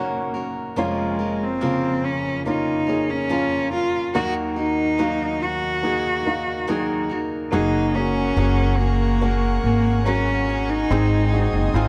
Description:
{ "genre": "pop ballad", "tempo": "71 BPM", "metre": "4/4", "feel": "straight", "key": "unclear", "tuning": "A4 = 440 Hz", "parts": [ { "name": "warm cello", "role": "melody", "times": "0.0-11.9 s", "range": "Ab3 to Gb4", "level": "-26 LUFS", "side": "equal", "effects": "none" }, { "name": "warm baby grand piano", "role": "accompaniment", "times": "0.0-11.9 s", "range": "F1 to F5", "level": "-28 LUFS", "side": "equal", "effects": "none" }, { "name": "picked steel-string acoustic guitar", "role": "arpeggios", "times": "0.0-11.9 s", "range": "Ab2 to Bb4", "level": "-32 LUFS", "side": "equal", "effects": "none" }, { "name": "airy breathy pad", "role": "sustained chords", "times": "8.1-11.9 s", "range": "Bb4 to Eb6", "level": "-32 LUFS", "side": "equal", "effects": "chorus" }, { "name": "upright bass", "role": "bass", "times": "7.5-11.9 s", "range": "Gb1 to Ab1", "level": "-23 LUFS", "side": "equal", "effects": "none" } ], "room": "light reverb", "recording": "dark, warm production", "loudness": "-22 LUFS", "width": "mono", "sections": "0.0-7.5 A section; 7.5-11.9 B section", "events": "none", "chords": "0.0 Gb; 0.8 Bbm/F; 4.1 Ebm; 7.5 Gbadd9; 10.9 Ab" }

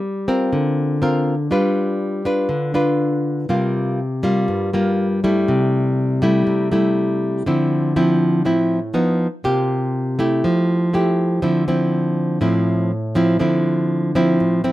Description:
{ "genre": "bossa nova", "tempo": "121 BPM", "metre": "4/4", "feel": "straight", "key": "unclear", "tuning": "A4 = 440 Hz", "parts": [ { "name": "nylon-string guitar", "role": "solo", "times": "0.0-14.7 s", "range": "G2 to B4", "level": "-16 LUFS", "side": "equal", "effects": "none" } ], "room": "light reverb", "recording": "none", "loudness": "-16 LUFS", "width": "side -15 dB against mid", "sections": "0.0-11.4 A section; 11.4-14.7 B section", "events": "none", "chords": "0.0 Gm7; 1.5 G7; 3.5 C7sus4; 5.5 Am7/C; 7.5 Dm9; 8.9 B; 9.4 C7sus4; 10.4 Fmaj9; 11.4 Dm9" }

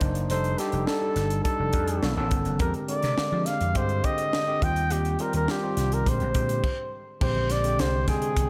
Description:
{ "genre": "polished 1980s jazz-funk pop", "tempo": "104 BPM", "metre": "4/4", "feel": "straight", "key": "unclear", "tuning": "A4 = 440 Hz", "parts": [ { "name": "overdriven tine electric piano", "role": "accompaniment", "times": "0.0-8.5 s", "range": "C3 to G5", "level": "-33 LUFS", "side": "equal", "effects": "lush chorus, slapback echo" }, { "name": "vintage slap bass", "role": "bass", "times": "0.0-8.5 s", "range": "F1 to F3", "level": "-30 LUFS", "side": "equal", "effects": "none" }, { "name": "crisp fusion drum kit", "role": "drums", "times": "0.0-8.5 s", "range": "crash cymbal, hi-hat, kick drum, snare drum", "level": "-32 LUFS", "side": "equal", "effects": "none" }, { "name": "warm flugelhorn", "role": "melody", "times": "0.3-8.5 s", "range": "G4 to G5", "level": "-30 LUFS", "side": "equal", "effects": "slapback echo" }, { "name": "congas", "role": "percussion", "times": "7.2-8.5 s", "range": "none", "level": "-42 LUFS", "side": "equal", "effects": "none" } ], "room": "moderate lush hall reverb, RT60 2.1 s", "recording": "big arena sound", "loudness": "-26 LUFS", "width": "mono", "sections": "0.0-7.2 A section; 7.2-8.5 B section", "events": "stop 6.6-7.2", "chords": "0.3 F13; 2.0 B9; 2.6 Bb13/F; 4.6 Eb69; 6.1 Bb13" }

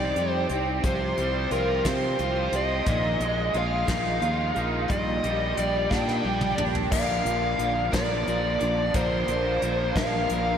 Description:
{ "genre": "folk rock and heartland rock", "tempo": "59 BPM (dotted quarters)", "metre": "6/8", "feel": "straight", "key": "unclear", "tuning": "A4 = 441 Hz", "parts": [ { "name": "bluesy overdriven lead guitar", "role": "melody", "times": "0.0-10.6 s", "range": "Bb4 to G5", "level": "-27 LUFS", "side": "equal", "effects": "distortion, analog delay" }, { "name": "picked steel-string acoustic guitar", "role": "accompaniment", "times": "0.0-10.6 s", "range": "Bb2 to Bb4", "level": "-31 LUFS", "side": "left 2 dB", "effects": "none" }, { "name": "raw garage guitar", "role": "riff", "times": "0.0-10.6 s", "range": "Bb2 to Bb4", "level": "-30 LUFS", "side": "right 2 dB", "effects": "overdrive, analog chorus" }, { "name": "modern bright fingered electric bass", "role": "bass", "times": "0.0-10.6 s", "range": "Bb1 to C3", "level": "-30 LUFS", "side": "equal", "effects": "none" }, { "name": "soft brush drum kit", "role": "drums", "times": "0.2-10.4 s", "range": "crash cymbal, hi-hat, kick drum, snare drum, toms", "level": "-31 LUFS", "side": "equal", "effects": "none" } ], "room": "wet lush hall reverb, RT60 2.2 s", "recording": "dreamy mix soaked in reverb", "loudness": "-23 LUFS", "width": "side -8 dB against mid", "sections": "0.0-6.9 A section; 6.9-10.6 B section", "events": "drum fill 5.9-6.9", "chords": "0.0 Cm; 0.8 Fsus2/C; 2.9 Bb7sus4; 4.9 Ebmaj7/Bb; 6.9 Bb" }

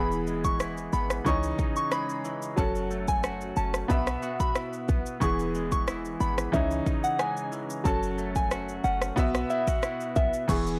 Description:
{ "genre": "dancehall", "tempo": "91 BPM", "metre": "4/4", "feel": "straight", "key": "E major", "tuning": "A4 = 440 Hz", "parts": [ { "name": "soft synth bell", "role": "melody", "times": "0.0-10.6 s", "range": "E5 to C#6", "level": "-33 LUFS", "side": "equal", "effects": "chorus" }, { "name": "clear grand piano", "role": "accompaniment", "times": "0.0-10.8 s", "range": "E3 to E5", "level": "-34 LUFS", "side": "equal", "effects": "sidechain pumping" }, { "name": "electric guitar at the edge of break-up", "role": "arpeggios", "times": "0.0-10.8 s", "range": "F#2 to F#4", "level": "-38 LUFS", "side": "equal", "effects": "vibrato effect" }, { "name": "short 808-style bass", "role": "bass", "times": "0.0-10.8 s", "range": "E1 to C#2", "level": "-35 LUFS", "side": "equal", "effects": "none" }, { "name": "afro-pop drum kit", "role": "drums", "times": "0.1-10.8 s", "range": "crash cymbal, kick drum, rim click, shaker", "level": "-32 LUFS", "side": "equal", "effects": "none" }, { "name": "maracas", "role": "percussion", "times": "10.5-10.8 s", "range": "none", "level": "-50 LUFS", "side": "equal", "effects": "none" } ], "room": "digital ambience", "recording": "dry, gritty hardware recording", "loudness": "-28 LUFS", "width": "mono", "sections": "0.0-10.5 A section", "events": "none", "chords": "0.0 E; 1.3 C#madd9; 2.6 F#m; 3.9 Bsus4; 5.2 E; 6.5 C#madd9; 7.9 F#m; 9.2 Bsus4" }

